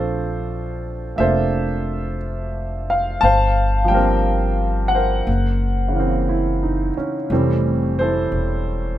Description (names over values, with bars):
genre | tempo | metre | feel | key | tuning
jazz ballad | 59 BPM | 4/4 | swing 67% on 8ths | unclear | A4 = 439 Hz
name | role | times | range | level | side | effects
clear grand piano | accompaniment | 0.0-9.0 s | Db3 to A5 | -20 LUFS | equal | none
upright bass | bass | 0.0-9.0 s | E1 to Bb1 | -21 LUFS | equal | none
room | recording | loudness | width
little or no reverb | none | -17 LUFS | side -13 dB against mid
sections
0.0-9.0 A section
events
none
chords
0.0 Bbmaj9; 3.2 Gm7; 5.3 Gb7#11; 7.3 Fmaj9